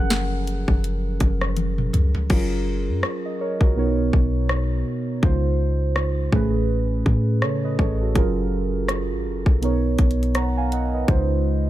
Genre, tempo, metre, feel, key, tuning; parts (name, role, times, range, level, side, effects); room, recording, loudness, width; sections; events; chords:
contemporary R&B; 82 BPM; 4/4; swing 58% on 16ths; F# major; A4 = 441 Hz
mellow horn-like synth lead; melody; 0.0-0.8 s; F#5; -34 LUFS; right 2 dB; chorus, ping-pong delay
muted felt-like synth keys; accompaniment; 0.0-11.7 s; A2 to A#5; -24 LUFS; right 2 dB; chorus
clean 808-style bass; bass; 0.0-11.7 s; F#1 to C#3; -23 LUFS; equal
trap drum kit; drums; 0.1-11.3 s; crash cymbal, hi-hat, kick drum, rim click, snare drum, toms; -22 LUFS; equal
digital ambience; -19 LUFS; side -14 dB against mid
0.0-2.3 A section; 2.3-11.7 B section
drum fill 1.6-2.3
0.0 F#maj9; 3.8 Bmaj9; 5.2 C#maj9; 6.3 Amaj9; 8.2 F#maj9; 9.6 Bmaj9; 11.1 C#maj9